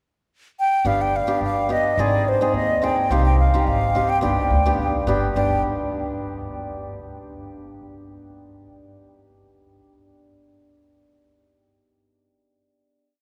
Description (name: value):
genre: klezmer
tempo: 106 BPM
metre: 2/4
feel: straight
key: G phrygian dominant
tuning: A4 = 439 Hz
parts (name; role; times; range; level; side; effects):
- mellow concert flute; melody; 0.6-5.6 s; C5 to G5; -24 LUFS; equal; none
- hammered dulcimer; accompaniment; 0.8-5.6 s; B3 to Ab4; -27 LUFS; equal; none
- upright bass; bass; 0.8-5.6 s; G1 to Eb2; -26 LUFS; equal; none
room: wet cathedral reverb, RT60 6.1 s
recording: recorded in a church or concert hall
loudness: -21 LUFS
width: mono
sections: 0.0-0.8 pickup bar; 0.8-5.4 A section; 5.4-6.5 final chord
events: none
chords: 0.0 N.C.; 0.8 G; 2.0 Ab; 3.1 Cm; 4.2 G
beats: 0.28 | 0.85 1.41 | 1.98 2.54 | 3.10 3.67 | 4.23 4.79 | 5.36